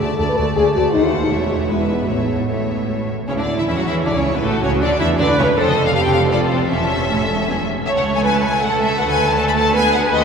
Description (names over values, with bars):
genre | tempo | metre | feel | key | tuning
quick classical-period movement for symphony orchestra | 158 BPM | 3/4 | rubato | unclear | A4 = 440 Hz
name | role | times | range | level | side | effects
rich studio violin section | melody | 0.0-10.2 s | A4 to B5 | -22 LUFS | left 3 dB | none
warm studio violin section | second line | 0.0-10.2 s | A3 to D5 | -23 LUFS | left 2 dB | none
rich studio viola section | accompaniment | 0.0-10.2 s | G#3 to C#5 | -22 LUFS | right 2 dB | none
mellow French horn section | sustained chords | 0.0-3.1 s | A3 to B4 | -20 LUFS | left 3 dB | none
rich studio cello section | bass | 0.0-10.2 s | C#2 to F#3 | -24 LUFS | right 3 dB | none
rich studio double bass section | bass | 0.0-10.2 s | E1 to E2 | -23 LUFS | right 3 dB | none
room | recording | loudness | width
wet cathedral reverb, RT60 5.7 s | minimal, uncompressed stereo recording | -15 LUFS | side -6 dB against mid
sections
0.0-3.3 A section; 3.3-10.2 B section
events
none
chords
0.0 D5; 0.9 D#dim7; 1.3 A/E; 1.7 E; 2.1 A; 3.3 Dmaj7sus2/C#; 4.4 D/A; 5.6 F; 6.7 A/E; 7.5 E5; 7.9 A/C#; 9.0 D5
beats
0.19 0.56 | 0.94 1.31 1.69 | 2.09 2.49 2.89 | 3.29 3.68 4.06 | 4.44 4.82 5.20 | 5.57 5.95 6.33 | 6.71 7.09 7.48 | 7.87 8.25 8.63 | 9.00 9.38 9.75 | 10.12